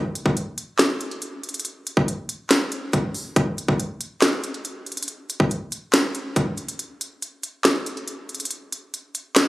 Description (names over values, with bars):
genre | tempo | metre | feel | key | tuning
hip hop | 140 BPM | 4/4 | half-time | none | none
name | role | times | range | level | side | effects
trap drum kit | drums | 0.2-9.5 s | handclaps, hi-hat, kick drum, snare drum | -21 LUFS | equal | none
room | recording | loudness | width
moderate lush hall reverb, RT60 2.3 s | recorded on a phone in the room, club reverb | -22 LUFS | side -18 dB against mid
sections
0.0-9.5 A section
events
kick muted 6.8-9.5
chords
none